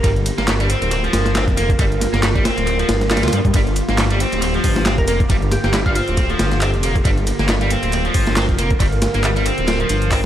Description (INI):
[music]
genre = breakbeat, breaks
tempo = 137 BPM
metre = 4/4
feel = swing 56% on 16ths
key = G minor pentatonic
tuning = A4 = 441 Hz
[part]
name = glassy wavetable pluck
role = melody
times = 0.0-0.1, 5.0-6.0 s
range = F4 to Bb4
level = -26 LUFS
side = equal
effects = chorus, small speaker sound, tape echo
[part]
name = warbly tape-like pad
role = sustained chords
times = 0.0-10.3 s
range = D3 to Bb4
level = -24 LUFS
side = equal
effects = chorus, built-in reverb, sidechain pumping
[part]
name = biting overdriven guitar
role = riff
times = 0.0-10.2 s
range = F3 to F4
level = -22 LUFS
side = equal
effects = spring reverb, tape echo
[part]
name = detuned saw bass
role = bass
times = 0.0-10.3 s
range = D1 to G2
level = -20 LUFS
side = equal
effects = none
[part]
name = breakbeat sampler-style drum kit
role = drums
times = 0.0-10.2 s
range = hi-hat, kick drum, ride cymbal, snare drum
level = -20 LUFS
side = equal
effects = small room reverb
[part]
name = punchy analog drum machine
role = drums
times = 0.0-10.3 s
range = handclaps, hi-hat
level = -27 LUFS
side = equal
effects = small room reverb, tape echo
[sound]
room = light reverb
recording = echo-heavy mix, lossy compression artefacts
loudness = -15 LUFS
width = side -11 dB against mid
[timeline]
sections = 0.0-10.3 A section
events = none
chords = 0.0 Gm7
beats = | 0.04 0.48 0.92 1.36 | 1.80 2.23 2.67 3.11 | 3.55 3.98 4.42 4.86 | 5.30 5.74 6.17 6.61 | 7.05 7.49 7.93 8.37 | 8.80 9.24 9.68 10.12